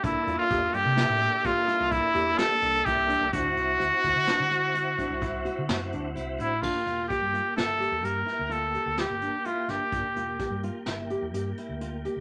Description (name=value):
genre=progressive instrumental, band music in an uneven meter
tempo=128 BPM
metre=7/4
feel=straight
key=G dorian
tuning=A4 = 440 Hz
part: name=bright trumpet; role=melody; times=0.0-10.6 s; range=E4 to Bb4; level=-28 LUFS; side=equal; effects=none
part: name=tonewheel organ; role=accompaniment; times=0.0-12.2 s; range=Bb3 to E5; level=-38 LUFS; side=equal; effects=chorus vibrato, fast rotary speaker
part: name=nylon-string guitar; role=arpeggios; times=0.0-12.2 s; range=D4 to G4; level=-38 LUFS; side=equal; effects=none
part: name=fingered electric bass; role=bass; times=0.0-12.2 s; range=E1 to D3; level=-37 LUFS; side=equal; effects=none
part: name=vintage brush drum kit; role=drums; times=0.0-12.2 s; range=crash cymbal, hi-hat, kick drum, snare drum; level=-36 LUFS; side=equal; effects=none
room=moderate studio reverb, RT60 0.8 s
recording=none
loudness=-27 LUFS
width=mono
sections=0.0-6.6 A section; 6.6-12.2 B section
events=none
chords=0.0 C13; 3.3 D7; 6.6 Gm